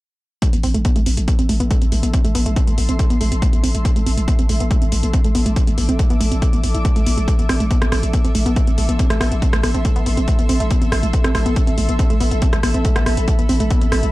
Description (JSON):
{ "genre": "driving peak-time techno", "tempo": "140 BPM", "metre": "4/4", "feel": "straight", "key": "A minor", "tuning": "A4 = 439 Hz", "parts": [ { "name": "warbly dusty pluck", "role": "riff", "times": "0.4-14.1 s", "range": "A3 to E4", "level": "-23 LUFS", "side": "right 1 dB", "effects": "chorus, overdrive, sidechain pumping, tape echo" }, { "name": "electronic kick drum", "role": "drums", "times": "0.4-13.8 s", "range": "none", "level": "-17 LUFS", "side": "equal", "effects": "none" }, { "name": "techno drum kit", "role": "drums", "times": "0.4-14.1 s", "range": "hi-hat, rim click", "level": "-26 LUFS", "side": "equal", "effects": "sidechain pumping on hats" }, { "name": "granular cloud pad", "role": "texture", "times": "1.2-14.1 s", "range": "A4 to D6", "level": "-28 LUFS", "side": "equal", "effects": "built-in reverb, sidechain pumping" }, { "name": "growling 808-style bass", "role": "bass", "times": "0.5-14.1 s", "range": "A1", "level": "-21 LUFS", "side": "equal", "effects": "tube saturation, sidechain pumping, low-pass filter" } ], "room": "digital ambience", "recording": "dark, warm production", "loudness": "-15 LUFS", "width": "side -18 dB against mid", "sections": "0.4-14.1 A section", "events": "filter sweep on synth arpeggio sound 0.4-14.1", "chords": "0.4 Am" }